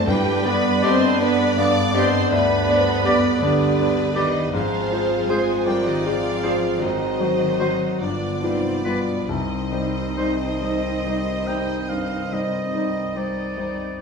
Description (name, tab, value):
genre	classical, romantic movement for piano and orchestra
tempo	44-55 BPM (dotted quarters)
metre	12/8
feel	rubato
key	C minor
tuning	A4 = 440 Hz
part	clear baby grand piano	melody	0.0-14.0 s	C2 to D5	-24 LUFS	left 1 dB	none
part	rich chamber violin section	melody	0.0-13.2 s	B4 to D6	-32 LUFS	right 1 dB	none
part	mellow hollow concert flute	second line	0.0-13.1 s	D4 to F5	-27 LUFS	equal	none
part	rich chamber violin section	second line	0.0-13.8 s	B4 to Eb5	-30 LUFS	equal	none
part	rich chamber viola section	accompaniment	0.0-14.0 s	B3 to D5	-30 LUFS	right 1 dB	none
part	mellow French horn section	sustained chords	0.0-13.2 s	B2 to D4	-31 LUFS	left 1 dB	none
part	warm trombone section	sustained chords	0.0-14.0 s	D3 to D4	-29 LUFS	right 4 dB	none
part	rich chamber cello section	bass	0.0-13.2 s	B2 to D4	-28 LUFS	equal	none
part	rich chamber double bass section	bass	0.0-14.0 s	G1 to G2	-30 LUFS	left 2 dB	none
part	timpani	percussion	0.1-1.2 s	G2	-29 LUFS	equal	none
part	bright clarinet	second line	0.8-12.9 s	Eb4 to Ab4	-29 LUFS	left 1 dB	none
part	clear oboe	second line	0.8-14.0 s	B4 to G5	-30 LUFS	right 1 dB	none
room	wet stone room reverb, RT60 0.9 s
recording	heard from further back in the room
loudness	-19 LUFS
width	side -5 dB against mid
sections	0.0-14.0 A section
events	none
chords	0.1 G; 4.5 Fm/Ab; 6.8 Ab7; 8.0 G7; 9.3 Cm